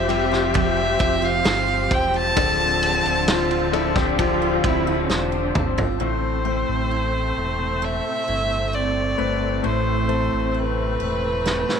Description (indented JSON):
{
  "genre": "pop ballad",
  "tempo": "66 BPM",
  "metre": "4/4",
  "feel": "straight",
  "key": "A minor",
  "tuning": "A4 = 439 Hz",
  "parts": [
    { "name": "rich violin", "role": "melody", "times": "0.0-11.8 s", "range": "B4 to A5", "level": "-24 LUFS", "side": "right 1 dB", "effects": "none" },
    { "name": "bright concert grand piano", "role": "accompaniment", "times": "0.0-11.8 s", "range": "A2 to C5", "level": "-26 LUFS", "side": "left 12 dB", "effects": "none" },
    { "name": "muted studio string section", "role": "sustained chords", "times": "0.0-11.8 s", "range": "C3 to G4", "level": "-28 LUFS", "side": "left 1 dB", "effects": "none" },
    { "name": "picked steel-string acoustic guitar", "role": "arpeggios", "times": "0.0-11.8 s", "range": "A2 to C5", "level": "-29 LUFS", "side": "right 14 dB", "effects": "none" },
    { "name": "sub bass with octave", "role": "bass", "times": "0.0-11.6 s", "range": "D1 to A1", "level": "-27 LUFS", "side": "right 1 dB", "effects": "none" },
    { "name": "loose indie drum kit", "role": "drums", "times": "0.1-6.0, 11.5-11.8 s", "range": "kick drum, ride cymbal, snare drum, toms", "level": "-25 LUFS", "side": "right 1 dB", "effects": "none" },
    { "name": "dark studio cello section", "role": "second line", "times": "3.3-6.0 s", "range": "C#4 to F4", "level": "-26 LUFS", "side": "right 1 dB", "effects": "none" }
  ],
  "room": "light reverb, small room ambience",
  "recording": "1960s-style stereo with parts hard left and right",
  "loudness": "-19 LUFS",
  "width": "side -7 dB against mid",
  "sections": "0.0-6.0 A section; 6.0-11.8 B section",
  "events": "drum fill 5.1-6.0, 11.5-11.8",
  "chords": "0.0 Fsus2; 2.4 Dm7; 6.0 Amadd9"
}